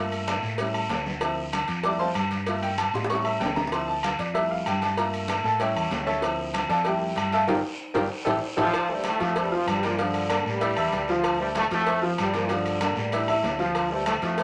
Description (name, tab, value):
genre	latin, salsa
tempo	192 BPM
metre	4/4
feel	straight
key	D minor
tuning	A4 = 438 Hz
part	bright upright piano	accompaniment	0.0-14.4 s	E3 to D6	-29 LUFS	equal	none
part	fingered electric bass	bass	0.0-14.4 s	G1 to A2	-35 LUFS	equal	none
part	agogo bells and timbales	percussion	0.1-14.4 s	none	-33 LUFS	equal	none
part	congas	percussion	0.1-14.4 s	none	-39 LUFS	equal	none
part	cowbell and bongos	percussion	0.3-14.4 s	none	-36 LUFS	equal	none
part	guiro	percussion	0.3-14.4 s	none	-39 LUFS	equal	none
part	clear trombone section	melody	8.6-14.4 s	G2 to F4	-30 LUFS	equal	none
room	moderate studio ambience, RT60 0.5 s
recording	none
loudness	-26 LUFS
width	mono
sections	0.0-8.7 A section; 8.7-14.4 B section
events	upright piano solo 0.0-8.7; drum fill 2.9-3.7, 8.1-8.7; band accent 7.5-8.7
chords	0.0 Gm7; 0.6 A7; 1.2 Dm7; 1.8 Fmaj7; 2.5 Gm7; 3.1 A7; 3.7 Dm7; 4.3 Fmaj7; 5.0 Gm7; 5.6 A7; 6.2 Dm7; 6.9 Fmaj7; 7.5 Gm7; 8.1 A5; 8.7 Fadd9; 9.4 F; 10.0 Gm7; 10.6 A5; 11.2 Dm7; 11.9 F; 12.5 Gm7; 13.1 A5; 13.7 Dm7